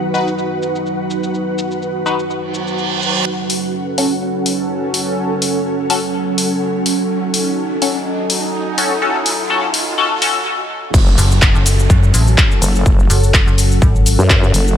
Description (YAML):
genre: bass house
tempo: 125 BPM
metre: 4/4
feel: swing 54% on 16ths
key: F# dorian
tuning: A4 = 442 Hz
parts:
  - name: sweeping resonant pad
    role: sustained chords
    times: 0.0-14.8 s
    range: F#3 to B4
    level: -22 LUFS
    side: right 1 dB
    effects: chorus, sidechain pumping
  - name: ethereal airy pad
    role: texture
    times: 0.0-14.8 s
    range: C#4 to G#5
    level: -23 LUFS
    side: right 1 dB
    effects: ensemble chorus, built-in reverb, tremolo, sidechain pumping
  - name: band-passed chord stab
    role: stabs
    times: 0.1-10.4 s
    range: C#4 to B4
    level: -19 LUFS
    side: left 3 dB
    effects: phaser, analog chorus, sidechain pumping, tape echo
  - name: big-room dance drum kit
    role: drums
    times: 0.1-14.8 s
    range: crash cymbal, handclaps, hi-hat, shaker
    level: -18 LUFS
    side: left 2 dB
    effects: low-pass filter on perc, small room reverb, low-pass filter on hats, low-pass filter on cymbals, low-pass filter on snare
  - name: reverse cymbal, riser and downlifter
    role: sound effects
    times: 2.5-14.8 s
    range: none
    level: -25 LUFS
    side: right 3 dB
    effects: none
  - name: vowel-sweep wobble bass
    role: bass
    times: 10.9-14.8 s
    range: F#1 to F#2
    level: -14 LUFS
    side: equal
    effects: chorus, tube saturation, sidechain pumping
  - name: electronic kick drum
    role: drums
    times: 10.9-14.4 s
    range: none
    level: -12 LUFS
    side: equal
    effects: small room reverb
  - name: metallic FM bass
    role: bass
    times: 11.2-14.2 s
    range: F#1 to F#2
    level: -13 LUFS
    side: equal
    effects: overdrive, sidechain pumping
room: light reverb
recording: high-pass filter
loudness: -13 LUFS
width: side -9 dB against mid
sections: 0.0-3.3 A section; 3.3-10.9 B section; 10.9-14.8 C section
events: reverse cymbal 2.5-3.3; build-up 3.3-10.9; riser 3.3-10.5; filter sweep on synth stab 3.3-10.9; break 10.5-10.9; drop 10.9-14.8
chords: 0.0 B; 3.3 F#m